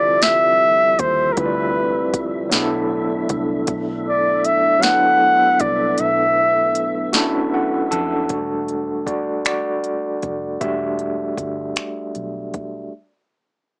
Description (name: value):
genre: slow six-eight R&B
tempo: 52 BPM (dotted quarters)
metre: 6/8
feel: straight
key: E minor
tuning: A4 = 441 Hz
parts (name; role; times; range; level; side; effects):
- breathy flugelhorn; melody; 0.0-7.1 s; A#4 to F#5; -15 LUFS; equal; none
- overdriven tine electric piano; accompaniment; 0.0-12.9 s; D3 to A5; -22 LUFS; equal; fast tremolo
- tonewheel organ; sustained chords; 0.0-8.3 s; C3 to E5; -28 LUFS; equal; chorus vibrato, slow rotary speaker
- vintage muted fingered electric bass; bass; 0.0-12.9 s; E1 to F2; -35 LUFS; equal; none
- smooth R&B drum kit; drums; 0.2-12.7 s; finger snaps, hi-hat, kick drum, snare drum; -20 LUFS; equal; overdrive
room: moderate studio ambience, RT60 0.5 s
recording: small speaker sound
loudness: -16 LUFS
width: side -40 dB against mid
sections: 0.0-8.3 A section; 8.3-12.9 B section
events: break 6.0-8.3; tine electric piano fill 7.1-8.3; tine electric piano solo 8.3-12.9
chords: 0.0 Dm11; 2.5 Bm11; 8.3 Em11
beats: 0.22 | 1.37 2.53 | 3.68 4.83 | 5.99 7.14 | 8.30 9.45 | 10.61 11.76